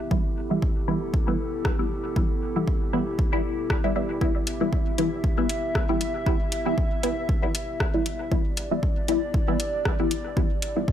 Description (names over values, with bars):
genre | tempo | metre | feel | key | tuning
dub techno | 117 BPM | 4/4 | swing 55% on 16ths | E minor | A4 = 441 Hz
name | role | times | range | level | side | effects
dark analog pad | sustained chords | 0.0-10.9 s | B3 to E5 | -31 LUFS | equal | wide subtle chorus, sidechain pumping
filtered dub chord stab | stabs | 0.1-10.8 s | E3 to E4 | -27 LUFS | left 1 dB | phaser, sidechain pumping, dub echo
electronic kick drum | drums | 0.1-10.9 s | none | -26 LUFS | equal | overdrive, small room reverb
deep house drum kit | drums | 1.6-10.7 s | hi-hat, rim click | -31 LUFS | equal | overdrive, small room reverb, dub echo
room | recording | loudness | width
light reverb, digital ambience | none | -23 LUFS | side -10 dB against mid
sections
0.0-10.9 A section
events
filter sweep on synth stab 0.0-10.9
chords
0.0 Em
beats
| 0.11 0.62 1.14 1.65 | 2.16 2.68 3.19 3.70 | 4.21 4.73 5.24 5.75 | 6.26 6.78 7.29 7.80 | 8.32 8.83 9.34 9.86 | 10.37 10.88